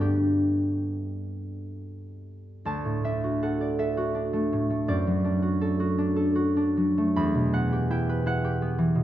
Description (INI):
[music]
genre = classical, solo harp piece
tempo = 42-59 BPM (dotted quarters)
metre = 6/8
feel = rubato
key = D major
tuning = A4 = 438 Hz
[part]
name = concert harp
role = solo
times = 0.0-9.0 s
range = D2 to B5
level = -24 LUFS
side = equal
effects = none
[sound]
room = moderate recital hall reverb, RT60 1.5 s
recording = nothing above 7.8 kHz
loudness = -23 LUFS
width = side -12 dB against mid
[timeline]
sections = 0.0-2.6 A section; 2.6-9.0 B section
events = none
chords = 0.0 G; 2.6 D; 4.9 D/F#; 7.2 Em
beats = | 0.00 1.29 | 2.65 3.78 | 4.88 5.97 | 7.17 8.26